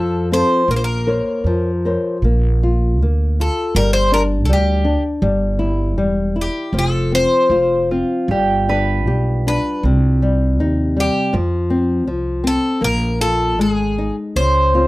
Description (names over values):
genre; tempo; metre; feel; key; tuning
fado-style ballad; 75-83 BPM; 2/4; rubato; Bb major; A4 = 440 Hz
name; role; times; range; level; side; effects
Greek bouzouki; melody; 0.0-14.9 s; G4 to C5; -18 LUFS; left 1 dB; none
nylon-string guitar; accompaniment; 0.0-14.9 s; C3 to Db5; -19 LUFS; left 2 dB; none
upright bass; bass; 0.0-14.9 s; E1 to F2; -18 LUFS; right 1 dB; none
concert harp; second line; 7.9-10.7 s; F4 to B4; -22 LUFS; right 4 dB; none
room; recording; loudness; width
light reverb; dry, close 1970s-style studio recording; -15 LUFS; side -19 dB against mid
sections
0.0-2.2 A section; 2.2-14.4 B section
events
none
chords
0.0 F; 0.7 Bbmadd9; 2.2 Bb; 3.7 G5; 5.2 Em; 6.7 F5; 8.3 G; 9.9 Cm; 11.3 F5; 12.8 Bb5; 13.6 Ab5; 14.4 Dbmaj7